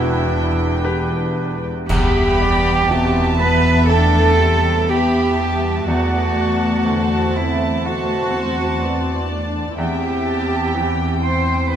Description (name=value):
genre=cinematic, emotional film score for orchestra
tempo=61 BPM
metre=4/4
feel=rubato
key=E minor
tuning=A4 = 441 Hz
part: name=warm studio violin section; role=melody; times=0.0-11.8 s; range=G5 to B5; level=-28 LUFS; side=left 1 dB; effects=none
part: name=dark studio violin section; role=second line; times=0.0-11.8 s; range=C5 to A5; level=-29 LUFS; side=left 2 dB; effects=none
part: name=mellow clarinet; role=second line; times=0.0-0.8 s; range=E4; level=-36 LUFS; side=left 1 dB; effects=none
part: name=warm oboe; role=second line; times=0.0-0.8 s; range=E4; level=-36 LUFS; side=right 3 dB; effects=none
part: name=bright baby grand piano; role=accompaniment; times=0.0-11.8 s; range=E2 to B4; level=-27 LUFS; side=equal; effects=none
part: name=dark studio viola section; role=accompaniment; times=0.0-11.8 s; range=C3 to B4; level=-24 LUFS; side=left 2 dB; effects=none
part: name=dark French horn section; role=sustained chords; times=0.0-11.8 s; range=B2 to B4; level=-27 LUFS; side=right 1 dB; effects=stereo widening
part: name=dark studio double bass section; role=bass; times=0.0-11.8 s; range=E1 to E2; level=-21 LUFS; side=equal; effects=none
part: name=warm studio cello section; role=bass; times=0.0-11.8 s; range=E2 to C5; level=-21 LUFS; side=right 2 dB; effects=none
part: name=silver concert flute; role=second line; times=1.9-11.8 s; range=E5 to C6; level=-26 LUFS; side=right 3 dB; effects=none
part: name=clash cymbals and concert bass drum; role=percussion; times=1.9-3.9 s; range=none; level=-24 LUFS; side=equal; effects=none
room=moderate cathedral reverb, RT60 5.2 s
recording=in a vast, echoing space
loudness=-15 LUFS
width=side -9 dB against mid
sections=0.0-1.9 A section; 1.9-11.8 B section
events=band accent 1.9-2.9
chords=0.0 Em7; 5.9 D7/E; 9.8 C/E